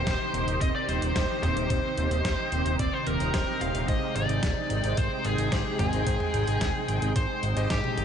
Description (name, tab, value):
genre	synthwave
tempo	110 BPM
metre	4/4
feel	straight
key	unclear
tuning	A4 = 441 Hz
part	smooth overdriven lead guitar	melody	0.0-8.0 s	G4 to F5	-30 LUFS	left 1 dB	diffuse ambient delay
part	analog string pad	sustained chords	0.0-8.0 s	C3 to G5	-32 LUFS	right 2 dB	ensemble chorus, sidechain pumping
part	bright electric grand piano	stabs	0.0-8.0 s	G3 to G5	-37 LUFS	left 3 dB	ping-pong delay
part	fat analog bass	bass	0.0-8.0 s	Eb1 to Ab1	-29 LUFS	equal	none
part	mellow electric guitar	riff	0.1-8.0 s	Ab3 to C5	-38 LUFS	right 2 dB	none
part	detuned 8-bit digital drum machine	drums	0.1-8.0 s	hi-hat, snare drum, toms	-34 LUFS	equal	studio reverb
part	electronic kick drum	drums	0.1-7.8 s	none	-30 LUFS	equal	studio reverb
room	moderate plate reverb, RT60 2.0 s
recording	dreamy mix soaked in reverb, nothing above 10.3 kHz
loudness	-24 LUFS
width	side -8 dB against mid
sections	0.0-8.0 A section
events	drum fill 7.8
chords	0.0 Cm/Eb; 3.9 Abmaj7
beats	0.07 0.61 1.16 | 1.70 2.25 2.79 3.34 | 3.88 4.43 4.98 5.52 | 6.07 6.61 7.16 7.70